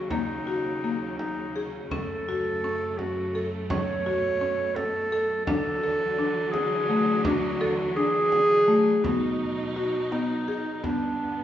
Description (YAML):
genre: contemporary instrumental, chamber music in an uneven meter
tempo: 168 BPM (eighths)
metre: 5/8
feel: straight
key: unclear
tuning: A4 = 440 Hz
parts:
  - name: warm clarinet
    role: melody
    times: 0.0-11.4 s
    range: D4 to C#5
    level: -26 LUFS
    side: equal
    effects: none
  - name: clear symphonic string section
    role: sustained chords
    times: 0.0-11.4 s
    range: D#2 to D#4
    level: -33 LUFS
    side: right 2 dB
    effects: none
  - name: buzzing marimba with medium mallets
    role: arpeggios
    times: 0.1-11.3 s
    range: A3 to A4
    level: -29 LUFS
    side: left 2 dB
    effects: none
  - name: frame drum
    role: percussion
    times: 0.1-11.2 s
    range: none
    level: -35 LUFS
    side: right 2 dB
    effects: none
room: wet recital hall reverb, RT60 1.7 s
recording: heard from further back in the room, nothing above 7.9 kHz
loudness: -23 LUFS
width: side -11 dB against mid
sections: 0.0-9.0 A section; 9.0-11.4 B section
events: none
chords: 0.0 D#m7; 1.9 F#m; 5.5 Dadd9; 9.0 B; 10.8 G